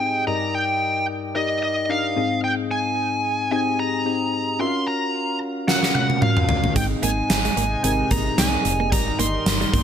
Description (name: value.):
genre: 1980s-style pop.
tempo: 111 BPM.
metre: 4/4.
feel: swing 55% on 16ths.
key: unclear.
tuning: A4 = 440 Hz.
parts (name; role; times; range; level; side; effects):
smooth overdriven lead guitar; melody; 0.0-9.8 s; Eb5 to C6; -23 LUFS; right 1 dB; digital delay.
soft electric-piano-like synth keys; accompaniment; 0.0-9.8 s; G2 to F5; -25 LUFS; left 3 dB; chorus.
gated 80s drum kit; drums; 5.7-9.8 s; hi-hat, kick drum, snare drum, tambourine, toms; -20 LUFS; equal; gated reverb.
chorused pulse-width pad; sustained chords; 6.8-9.8 s; C3 to Bb4; -30 LUFS; right 1 dB; none.
direct-recorded clean electric guitar; riff; 6.8-9.8 s; G3 to Bb3; -30 LUFS; right 7 dB; wide subtle chorus, digital delay.
solid FM bass; bass; 6.8-9.8 s; F1 to C2; -26 LUFS; equal; none.
room: light reverb, small room ambience.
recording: none.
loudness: -19 LUFS.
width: side -8 dB against mid.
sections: 0.0-9.8 A section.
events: drum fill 5.7-6.8.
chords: 0.3 Ebmaj7/G; 2.2 Abmaj7; 4.6 Gbmaj7; 6.8 Abmaj7; 8.9 Ebmaj7/G.